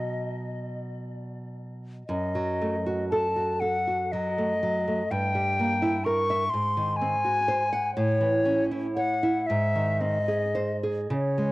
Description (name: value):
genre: romantic duo for flute and classical guitar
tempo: 36-42 BPM (dotted quarters)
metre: 6/8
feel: rubato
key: unclear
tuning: A4 = 439 Hz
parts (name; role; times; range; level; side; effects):
- bright silver concert flute; melody; 0.0-11.5 s; C#5 to Db6; -27 LUFS; left 2 dB; cassette tape, tape echo
- nylon-string guitar; accompaniment; 0.0-11.5 s; F#2 to F#5; -27 LUFS; right 1 dB; none
room: light reverb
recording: home recording on cassette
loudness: -24 LUFS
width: side -19 dB against mid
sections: 0.0-11.5 A section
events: none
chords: 0.0 B; 2.1 D#dim/F#; 5.1 Gdim7; 6.5 G#7; 8.0 A; 9.5 G#